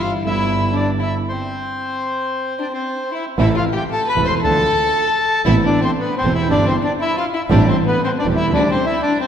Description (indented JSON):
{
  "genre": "tango",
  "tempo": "117 BPM",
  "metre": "4/4",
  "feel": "rubato",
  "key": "C major, A minor from 3.4 s",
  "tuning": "A4 = 440 Hz",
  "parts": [
    { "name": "bandoneon", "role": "melody", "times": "0.0-9.3 s", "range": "B3 to C6", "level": "-20 LUFS", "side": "left 1 dB", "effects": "none" },
    { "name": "warm violin", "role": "second line", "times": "0.0-9.3 s", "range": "B3 to C5", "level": "-22 LUFS", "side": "left 3 dB", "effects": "none" },
    { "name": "clear concert grand piano", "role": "accompaniment", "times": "0.0-8.7 s", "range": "E1 to G4", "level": "-21 LUFS", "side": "right 2 dB", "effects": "none" },
    { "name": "clear double bass", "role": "bass", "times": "0.0-8.7 s", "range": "E1 to D2", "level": "-22 LUFS", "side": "right 1 dB", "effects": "none" },
    { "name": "rich symphonic string section", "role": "stabs", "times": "3.4-8.7 s", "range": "A3 to A4", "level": "-30 LUFS", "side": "right 1 dB", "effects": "none" }
  ],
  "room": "wet concert hall reverb, RT60 1.8 s",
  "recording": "heard from further back in the room",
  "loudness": "-15 LUFS",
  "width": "side -8 dB against mid",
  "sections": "0.0-3.4 A section; 3.4-9.3 B section",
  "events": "stop 1.3-3.4",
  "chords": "0.3 G6; 1.3 C; 3.4 Am; 4.4 Dm; 5.5 Amadd9; 6.5 Em7/G; 7.5 Am7; 8.5 D7sus4"
}